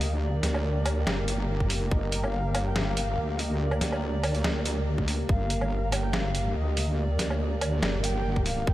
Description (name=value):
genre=deep dubstep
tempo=142 BPM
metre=4/4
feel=swing 53% on 16ths, half-time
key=G minor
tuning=A4 = 437 Hz
part: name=reedy long shakuhachi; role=melody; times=0.0-8.7 s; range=D5 to G5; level=-35 LUFS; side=equal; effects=dub echo
part: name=dark analog pad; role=sustained chords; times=0.0-8.7 s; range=Bb3 to Bb4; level=-33 LUFS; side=right 1 dB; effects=chorus
part: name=wobble bass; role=bass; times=0.0-8.7 s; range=G1 to D2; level=-28 LUFS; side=equal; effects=chorus
part: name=trip hop sampler-style drum kit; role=drums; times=0.0-8.5 s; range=hi-hat, snare drum, woodblock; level=-32 LUFS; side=equal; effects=none
part: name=electronic kick drum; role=drums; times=1.6-2.0, 5.0-5.4, 8.4-8.7 s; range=none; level=-26 LUFS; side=equal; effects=none
room=light reverb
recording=none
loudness=-25 LUFS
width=side -15 dB against mid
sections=0.0-8.7 A section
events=none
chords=0.0 Gm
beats=| 0.22 0.64 1.07 1.49 | 1.91 2.33 2.76 3.18 | 3.60 4.02 4.45 4.87 | 5.29 5.71 6.14 6.56 | 6.98 7.41 7.83 8.25 | 8.67